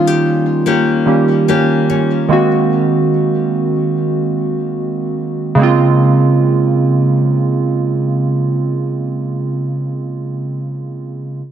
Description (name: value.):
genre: R&B.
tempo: 73 BPM.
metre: 4/4.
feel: swing 58% on 16ths.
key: Bb minor.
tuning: A4 = 437 Hz.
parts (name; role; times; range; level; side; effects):
warm analog keys; accompaniment; 0.0-11.4 s; Db3 to G4; -13 LUFS; right 2 dB; chorus.
nylon-string guitar; arpeggios; 0.0-2.5 s; Eb3 to G4; -17 LUFS; left 6 dB; ping-pong delay.
room: light reverb.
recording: none.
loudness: -13 LUFS.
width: side -9 dB against mid.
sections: 0.0-5.6 A section; 5.6-8.9 B section.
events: none.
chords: 0.0 Eb7; 2.3 Ab7; 5.6 Bbm7.